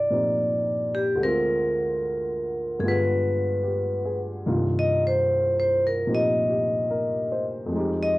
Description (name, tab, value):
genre	jazz ballad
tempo	74 BPM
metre	4/4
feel	swing 67% on 8ths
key	C minor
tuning	A4 = 441 Hz
part	vibraphone with medium hard mallets	melody	0.0-8.2 s	G4 to Eb5	-23 LUFS	equal	cassette tape
part	warm upright piano	accompaniment	0.0-8.2 s	C2 to C5	-26 LUFS	equal	cassette tape
room	light reverb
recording	home recording on cassette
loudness	-22 LUFS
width	side -19 dB against mid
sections	0.0-4.5 A section; 4.5-8.2 B section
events	vibraphone solo 4.5-8.2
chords	0.0 Cm11; 1.2 Dm7b5; 2.8 G7b9; 4.5 Cm7